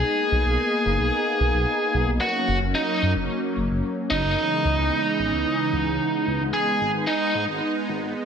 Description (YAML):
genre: synthwave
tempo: 111 BPM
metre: 4/4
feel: straight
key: unclear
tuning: A4 = 439 Hz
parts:
  - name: biting lead guitar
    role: melody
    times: 0.0-7.4 s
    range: D#4 to G#4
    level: -23 LUFS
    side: right 1 dB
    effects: overdrive, digital delay
  - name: warm analog pad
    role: sustained chords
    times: 0.0-8.2 s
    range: C#3 to D#4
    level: -27 LUFS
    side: equal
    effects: chorus
  - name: dark detuned saw bass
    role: bass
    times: 0.0-8.1 s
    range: F#1 to G#2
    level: -25 LUFS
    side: equal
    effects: none
room: moderate lush hall reverb, RT60 2.3 s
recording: dense, heavily limited modern master, high-pass filter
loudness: -20 LUFS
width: side -7 dB against mid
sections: 0.0-2.2 A section; 2.2-8.2 B section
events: none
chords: 0.0 Bmaj7; 2.2 F#; 4.4 C#m7; 6.5 G#m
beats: | 0.05 0.59 1.13 1.67 | 2.21 2.75 3.29 3.83 | 4.37 4.91 5.45 5.99 | 6.53 7.07 7.62 8.15